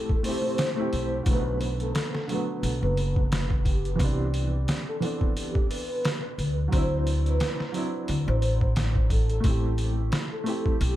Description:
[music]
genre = trip hop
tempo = 88 BPM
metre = 4/4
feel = swing 56% on 16ths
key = B phrygian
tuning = A4 = 439 Hz
[part]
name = pure breathy sine lead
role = melody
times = 0.0-11.0 s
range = G4 to C5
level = -33 LUFS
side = equal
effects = ensemble chorus, tape echo
[part]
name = dark upright piano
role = accompaniment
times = 0.0-11.0 s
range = D3 to G4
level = -31 LUFS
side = right 1 dB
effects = tremolo, vintage 12-bit sampler grit, tape echo
[part]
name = trip hop sampler-style drum kit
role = drums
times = 0.1-11.0 s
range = hi-hat, kick drum, snare drum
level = -27 LUFS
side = equal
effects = overdrive
[part]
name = upright bass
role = bass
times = 0.9-11.0 s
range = F#1 to D2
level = -26 LUFS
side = equal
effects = none
[sound]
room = digital ambience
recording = echo-heavy mix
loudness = -24 LUFS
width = side -14 dB against mid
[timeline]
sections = 0.0-11.0 A section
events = kick drops out 10.8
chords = 0.0 Am7; 1.3 Bm7; 4.0 Cmaj9; 6.7 D9; 9.4 Am7

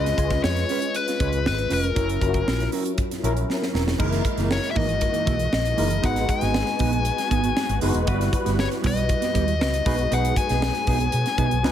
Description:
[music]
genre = polished 1980s jazz-funk pop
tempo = 118 BPM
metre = 4/4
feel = straight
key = unclear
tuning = A4 = 440 Hz
[part]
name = nasal lead guitar with a parked wah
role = melody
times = 0.0-11.7 s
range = A#4 to G#5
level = -26 LUFS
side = left 4 dB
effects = overdrive
[part]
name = barky tine electric piano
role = accompaniment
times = 0.0-11.7 s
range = E#3 to C#5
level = -28 LUFS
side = left 3 dB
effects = overdrive, ensemble chorus
[part]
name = mellow electric guitar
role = riff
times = 0.0-11.7 s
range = E3 to C#5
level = -29 LUFS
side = right 8 dB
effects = analog chorus
[part]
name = vintage muted fingered electric bass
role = bass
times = 0.0-11.7 s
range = E1 to B2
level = -25 LUFS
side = equal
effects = none
[part]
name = crisp fusion drum kit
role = drums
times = 0.1-11.7 s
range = crash cymbal, hi-hat, kick drum, snare drum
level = -27 LUFS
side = right 1 dB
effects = none
[part]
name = warm symphonic string section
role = sustained chords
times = 4.0-11.7 s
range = E3 to G#4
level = -35 LUFS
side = right 3 dB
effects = none
[sound]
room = light reverb, studio reverb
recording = none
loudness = -20 LUFS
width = side -10 dB against mid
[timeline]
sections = 0.0-4.0 A section; 4.0-11.7 B section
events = drum fill 3.5-4.0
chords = 0.0 C#7; 2.0 F#7; 4.0 F#13; 6.0 G#m7; 8.1 Emadd9/G; 9.9 B6

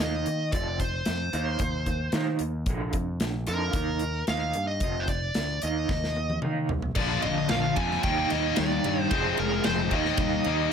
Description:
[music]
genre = quiet-loud alternative rock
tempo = 112 BPM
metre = 4/4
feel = straight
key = unclear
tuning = A4 = 440 Hz
[part]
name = dark smooth lead guitar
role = melody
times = 0.0-10.7 s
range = Bb4 to Ab5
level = -30 LUFS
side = right 1 dB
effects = overdrive, slapback echo
[part]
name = electric guitar through a small old amp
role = arpeggios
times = 0.0-10.7 s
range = F2 to Ab4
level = -31 LUFS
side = right 5 dB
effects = tremolo
[part]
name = growling fingered electric bass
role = bass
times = 0.0-10.7 s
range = F1 to Eb3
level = -31 LUFS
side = equal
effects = overdrive
[part]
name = big rock drum kit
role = drums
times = 0.0-10.6 s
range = crash cymbal, hi-hat, kick drum, ride cymbal, snare drum, toms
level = -31 LUFS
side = equal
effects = none
[part]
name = scooped high-gain guitar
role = riff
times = 7.0-10.7 s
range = Bb2 to C4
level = -28 LUFS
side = left 14 dB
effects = distortion
[sound]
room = light reverb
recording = none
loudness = -24 LUFS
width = side -7 dB against mid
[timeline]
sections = 0.0-7.0 A section; 7.0-10.7 B section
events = drum fill 5.9-7.0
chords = 0.0 Eb5; 0.5 F5; 1.3 Eb5; 2.7 Bb; 3.7 Eb; 4.8 F5; 5.6 Eb5; 7.0 Bb; 8.0 Eb; 9.1 Fm; 9.9 Eb

